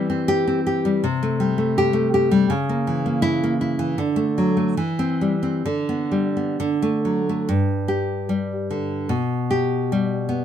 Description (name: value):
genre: romantic piece for solo classical guitar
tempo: 64-83 BPM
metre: 2/4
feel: rubato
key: G major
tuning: A4 = 440 Hz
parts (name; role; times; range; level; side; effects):
- nylon-string guitar; solo; 0.0-10.4 s; G2 to G4; -19 LUFS; equal; none
room: light reverb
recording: minimal, uncompressed stereo recording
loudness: -19 LUFS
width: side -9 dB against mid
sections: 0.0-7.5 A section; 7.5-10.4 B section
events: none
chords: 0.0 C/E; 1.1 Am7/C; 2.5 C#m6; 4.0 D; 4.8 C/E; 5.7 G/D; 6.6 D; 7.5 G5; 9.1 G/B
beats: 0.30 | 1.05 1.80 | 2.53 3.26 | 4.00 4.80 | 5.68 6.60 | 7.50 8.28 | 9.09 9.89